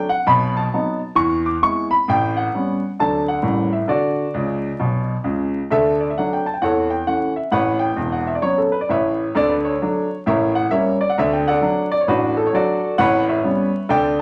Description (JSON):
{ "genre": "jazz, stride piano", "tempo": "132 BPM", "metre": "4/4", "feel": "swing 64% on 8ths", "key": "D major", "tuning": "A4 = 440 Hz", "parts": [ { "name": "clear grand piano", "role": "solo", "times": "0.0-14.2 s", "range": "E1 to D6", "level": "-19 LUFS", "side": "equal", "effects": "none" } ], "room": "wet club reverb, RT60 0.7 s", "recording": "vinyl crackle, nothing above 10.6 kHz", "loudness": "-19 LUFS", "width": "mono", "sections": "0.0-5.7 A section; 5.7-14.2 A section", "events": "grand piano fill 4.4-5.7", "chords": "0.3 B7; 1.2 E; 2.1 A13; 3.0 D; 3.4 A7b9; 3.9 D; 6.6 A/E; 7.5 A69; 9.3 D; 10.3 A7b9; 11.2 D; 13.0 A9" }